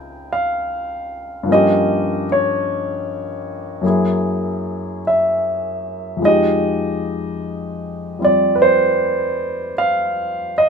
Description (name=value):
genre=jazz ballad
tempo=51 BPM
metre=4/4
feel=swing 68% on 8ths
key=unclear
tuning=A4 = 440 Hz
part: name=warm grand piano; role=solo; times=0.0-10.7 s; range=Db2 to G5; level=-16 LUFS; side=equal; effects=none
room=light reverb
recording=minimal, uncompressed stereo recording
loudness=-16 LUFS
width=side -6 dB against mid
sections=0.0-10.7 A section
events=none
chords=0.0 Dbmaj7; 1.5 Gm7b5; 3.8 Gb9; 6.2 Fm9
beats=0.30 | 1.48 2.65 3.83 5.02 | 6.20 7.38 8.57 9.74